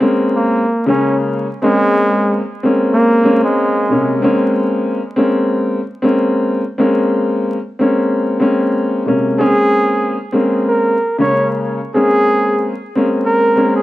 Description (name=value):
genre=hip hop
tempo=93 BPM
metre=4/4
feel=swing 60% on 16ths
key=Bb minor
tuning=A4 = 437 Hz
part: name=dark grand piano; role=accompaniment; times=0.0-13.8 s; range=C3 to Db4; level=-14 LUFS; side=left 1 dB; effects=cassette tape, high-pass filter, low-pass filter
part: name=trumpet with bucket mute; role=melody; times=0.4-4.2, 9.4-13.8 s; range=Ab3 to Db5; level=-16 LUFS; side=right 1 dB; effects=high-pass filter, low-pass filter, tape echo
room=moderate studio reverb, RT60 0.7 s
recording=dark, warm production, vinyl crackle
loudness=-12 LUFS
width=side -16 dB against mid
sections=0.0-9.4 A section; 9.4-13.8 B section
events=none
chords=0.0 Bbm9